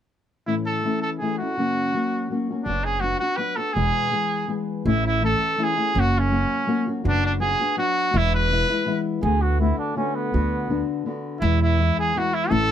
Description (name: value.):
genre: mexican folk, mariachi.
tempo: 165 BPM.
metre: 3/4.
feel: swing 53% on 8ths.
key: A major.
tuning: A4 = 439 Hz.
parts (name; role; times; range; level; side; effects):
bright trumpet; melody; 0.5-9.0, 11.4-12.7 s; C#4 to B4; -23 LUFS; right 1 dB; none.
nylon-string guitar; accompaniment; 0.5-12.7 s; E2 to G#4; -25 LUFS; left 4 dB; none.
upright bass; bass; 2.7-12.7 s; E1 to E2; -23 LUFS; right 1 dB; none.
mellow trumpet; second line; 9.2-10.9 s; B3 to G#4; -26 LUFS; right 4 dB; none.
room: little or no reverb.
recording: close, detailed microphones.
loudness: -20 LUFS.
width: side -10 dB against mid.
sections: 0.5-4.9 A section; 4.9-12.7 B section.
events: none.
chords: 0.5 A; 1.6 F#; 2.7 Bm/F#; 3.8 E; 4.9 A; 5.9 F#; 7.0 Bm/F#; 8.1 E; 9.2 D6; 10.3 Bm/D; 11.4 E.